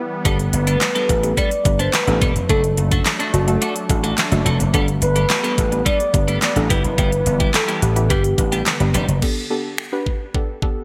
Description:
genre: dance-pop.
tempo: 107 BPM.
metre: 4/4.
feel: straight.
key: G major.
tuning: A4 = 436 Hz.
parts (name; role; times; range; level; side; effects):
soft round pluck; accompaniment; 0.0-10.8 s; A3 to B4; -28 LUFS; equal; chorus, sidechain pumping.
sweeping resonant pad; sustained chords; 0.0-9.2 s; D3 to D4; -32 LUFS; equal; chorus, sidechain pumping.
clean electric guitar; riff; 0.2-9.1 s; G3 to A4; -27 LUFS; equal; analog chorus.
vintage slap bass; bass; 0.3-9.2 s; E1 to A1; -22 LUFS; equal; sidechain pumping.
pop drum kit; drums; 0.3-10.8 s; crash cymbal, finger snaps, handclaps, hi-hat, kick drum, snare drum; -23 LUFS; equal; gated reverb.
mellow horn-like synth lead; melody; 0.5-8.7 s; G4 to D5; -25 LUFS; equal; chorus, delay.
room: light reverb, digital ambience.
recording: bright 1980s-style digital production.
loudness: -18 LUFS.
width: mono.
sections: 0.0-9.2 A section; 9.2-10.8 B section.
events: break 0.0.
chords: 0.3 Gadd9; 2.5 D/F#; 4.7 Gadd9; 6.7 Em; 8.1 G; 9.2 Gadd9.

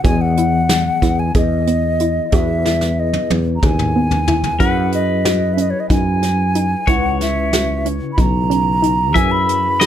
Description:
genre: progressive instrumental, band music in an uneven meter.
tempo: 185 BPM (eighths).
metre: 7/8.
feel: straight.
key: unclear.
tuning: A4 = 440 Hz.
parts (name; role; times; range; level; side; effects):
mellow hollow silver concert flute; melody; 0.0-9.9 s; C#5 to B5; -19 LUFS; equal; none.
overdriven tine electric piano; accompaniment; 0.0-9.9 s; C#3 to D#5; -25 LUFS; left 5 dB; medium tremolo.
soft round pluck; arpeggios; 0.0-9.9 s; B3 to G#4; -23 LUFS; equal; chorus, ping-pong delay.
sustaining fretless electric bass; bass; 0.0-9.9 s; B1 to F#2; -19 LUFS; equal; none.
soft brush drum kit; drums; 0.0-9.9 s; hi-hat, kick drum, snare drum, toms; -19 LUFS; equal; none.
clean electric guitar; second line; 4.6-9.9 s; B4 to E5; -22 LUFS; left 5 dB; none.
room: light reverb.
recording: none.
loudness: -14 LUFS.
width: side -10 dB against mid.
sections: 0.0-4.6 A section; 4.6-9.9 B section.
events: drum fill 2.7-4.6.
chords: 0.0 Emaj7; 4.6 F#9sus4; 6.9 C#m7; 9.2 F#9sus4.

